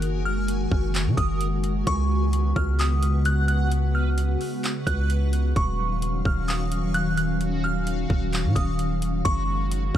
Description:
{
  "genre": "hip hop, atmospheric cloud-rap",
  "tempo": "130 BPM",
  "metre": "4/4",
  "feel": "half-time",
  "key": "F# major",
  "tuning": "A4 = 440 Hz",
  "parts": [
    { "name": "glassy FM pad", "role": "sustained chords", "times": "0.0-10.0 s", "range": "C#3 to E#5", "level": "-27 LUFS", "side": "left 1 dB", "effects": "ensemble chorus, built-in reverb, sidechain pumping" },
    { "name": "long sustained 808-style bass", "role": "bass", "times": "0.0-10.0 s", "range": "D#1 to C#3", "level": "-24 LUFS", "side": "equal", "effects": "none" },
    { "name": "trap drum kit", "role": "drums", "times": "0.0-10.0 s", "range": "handclaps, hi-hat, kick drum", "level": "-27 LUFS", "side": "equal", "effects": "none" },
    { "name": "backwards swelling texture", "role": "texture", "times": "0.0-10.0 s", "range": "F#4 to C#6", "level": "-38 LUFS", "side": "equal", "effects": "built-in reverb" },
    { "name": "delicate synth tine bell", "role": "melody", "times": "0.3-10.0 s", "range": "C#6 to F#6", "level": "-30 LUFS", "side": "right 1 dB", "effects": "chorus, phaser, low-pass filter, analog delay" }
  ],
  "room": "little or no reverb",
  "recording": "dry, gritty hardware recording",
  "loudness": "-21 LUFS",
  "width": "side -11 dB against mid",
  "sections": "0.0-9.3 A section",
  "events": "none",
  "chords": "0.0 F#69; 1.9 C#7sus4; 5.6 D#m9; 9.3 F#69",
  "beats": "| 0.02 0.48 0.95 1.41 | 1.87 2.33 2.79 3.25 | 3.71 4.18 4.64 5.10 | 5.56 6.02 6.48 6.95 | 7.41 7.87 8.33 8.79 | 9.25 9.71"
}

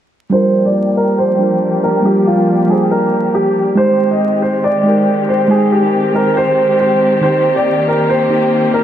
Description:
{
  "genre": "hip hop",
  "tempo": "139 BPM",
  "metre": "4/4",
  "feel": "half-time",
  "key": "G phrygian",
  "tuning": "A4 = 440 Hz",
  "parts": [
    { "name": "dark baby grand piano", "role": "melody", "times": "0.3-8.8 s", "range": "F4 to Eb5", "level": "-14 LUFS", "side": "right 1 dB", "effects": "low-pass filter" },
    { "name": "muted felt-like synth keys", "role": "accompaniment", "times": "0.3-8.8 s", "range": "Eb3 to C5", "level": "-16 LUFS", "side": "right 1 dB", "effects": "chorus, low-pass filter" },
    { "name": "dark chamber string section", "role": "sustained chords", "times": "0.3-8.8 s", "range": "Eb3 to G4", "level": "-16 LUFS", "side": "left 2 dB", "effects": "low-pass filter" }
  ],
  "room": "wet plate reverb, RT60 3.8 s",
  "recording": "dreamy mix soaked in reverb, vinyl crackle",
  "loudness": "-11 LUFS",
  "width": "side -10 dB against mid",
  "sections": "0.3-8.8 A section",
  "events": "filter sweep 0.3-8.8",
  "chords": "0.3 Gm7; 3.8 Abmaj7; 7.2 Eb6",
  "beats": "| 0.32 0.76 1.19 1.62 | 2.05 2.48 2.91 3.35 | 3.78 4.21 4.64 5.07 | 5.50 5.93 6.37 6.80 | 7.23 7.66 8.09 8.52"
}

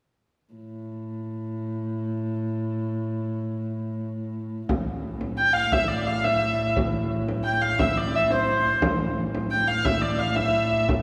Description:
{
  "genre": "medieval dance",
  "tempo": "116 BPM (dotted quarters)",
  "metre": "6/8",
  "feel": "straight",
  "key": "A minor",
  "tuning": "A4 = 442 Hz",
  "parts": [
    { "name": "dark viola da gamba", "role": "drone", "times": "0.5-11.0 s", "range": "A2", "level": "-31 LUFS", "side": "equal", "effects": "none" },
    { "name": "frame drum", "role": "percussion", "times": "4.7-11.0 s", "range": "none", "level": "-30 LUFS", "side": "equal", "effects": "none" },
    { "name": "clear hurdy-gurdy", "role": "melody", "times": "5.4-10.8 s", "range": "C5 to G5", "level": "-25 LUFS", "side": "equal", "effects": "none" }
  ],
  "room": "wet church reverb, RT60 2.7 s",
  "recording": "recorded in a church or concert hall",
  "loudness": "-25 LUFS",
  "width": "mono",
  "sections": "0.6-4.7 A section; 4.7-11.0 B section",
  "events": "none",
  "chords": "none",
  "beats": "| 0.55 1.07 | 1.59 2.10 | 2.62 3.14 | 3.65 4.17 | 4.69 5.21 | 5.72 6.24 | 6.75 7.27 | 7.79 8.30 | 8.82 9.33 | 9.85 10.36 | 10.88"
}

